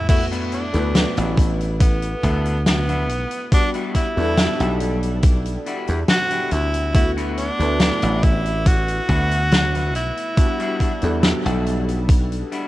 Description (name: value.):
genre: vaporwave.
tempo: 70 BPM.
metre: 4/4.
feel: straight.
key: D major.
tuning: A4 = 438 Hz.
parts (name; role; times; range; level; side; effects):
edgy tenor saxophone; melody; 0.0-11.6 s; B3 to F#4; -25 LUFS; equal; tape echo.
warm electric grand piano; accompaniment; 0.0-12.7 s; G3 to B4; -27 LUFS; left 1 dB; ensemble chorus, vintage 12-bit sampler grit, tape echo.
big rock drum kit; drums; 0.1-12.7 s; crash cymbal, hi-hat, snare drum; -23 LUFS; equal; none.
electronic kick drum; drums; 0.1-12.3 s; none; -16 LUFS; equal; overdrive.
semi-hollow electric guitar; riff; 0.3-12.7 s; G3 to A4; -32 LUFS; left 3 dB; lush chorus, tape echo.
dry thumbed slap bass; bass; 0.7-12.4 s; A1 to E2; -22 LUFS; equal; tube saturation.
room: small room ambience.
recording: rough home demo mix, cassette tape.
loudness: -17 LUFS.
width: side -16 dB against mid.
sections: 0.1-12.7 A section.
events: none.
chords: 0.1 D69; 3.5 Em9; 6.9 D69; 10.4 Em9.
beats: | 0.09 0.95 1.80 2.66 | 3.52 4.38 5.23 6.09 | 6.95 7.80 8.66 9.52 | 10.38 11.23 12.09.